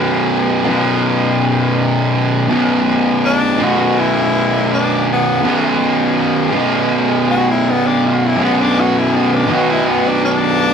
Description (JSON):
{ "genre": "metal", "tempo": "82 BPM", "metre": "4/4", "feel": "straight", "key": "B minor", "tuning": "A4 = 439 Hz", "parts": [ { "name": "fuzz guitar", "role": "riff", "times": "0.0-10.7 s", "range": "B1 to B2", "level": "-13 LUFS", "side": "equal", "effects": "distortion" }, { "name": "clear tenor saxophone", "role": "melody", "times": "3.3-10.7 s", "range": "B3 to F#4", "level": "-18 LUFS", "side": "left 2 dB", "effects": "none" } ], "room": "moderate studio reverb, RT60 0.6 s", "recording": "rough rehearsal-room recording", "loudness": "-12 LUFS", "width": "side -7 dB against mid", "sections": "0.0-10.7 A section", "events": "tenor saxophone solo 0.0-10.7", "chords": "0.0 B5" }